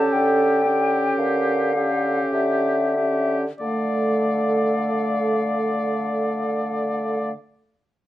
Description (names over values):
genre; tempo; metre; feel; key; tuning
classical, slow romantic movement for wind quintet; 45-62 BPM; 4/4; rubato; D minor; A4 = 440 Hz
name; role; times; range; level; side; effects
hollow concert flute; melody; 0.0-7.3 s; E5 to A5; -26 LUFS; left 5 dB; none
warm oboe; second line; 0.0-7.3 s; G4 to D5; -28 LUFS; left 2 dB; none
dark clarinet; accompaniment; 0.0-7.3 s; G4 to Bb4; -27 LUFS; right 4 dB; none
warm French horn; accompaniment; 0.0-7.3 s; A3 to C#4; -26 LUFS; right 1 dB; none
mellow bassoon; bass; 0.0-7.3 s; D3; -24 LUFS; right 1 dB; none
room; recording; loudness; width
light reverb; worn, warbling old tape, cassette tape, warbly pitch drift; -19 LUFS; side -14 dB against mid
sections
0.0-3.6 A section; 3.6-8.1 B section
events
slowing down 0.0-3.6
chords
0.0 A7/D; 3.6 Dm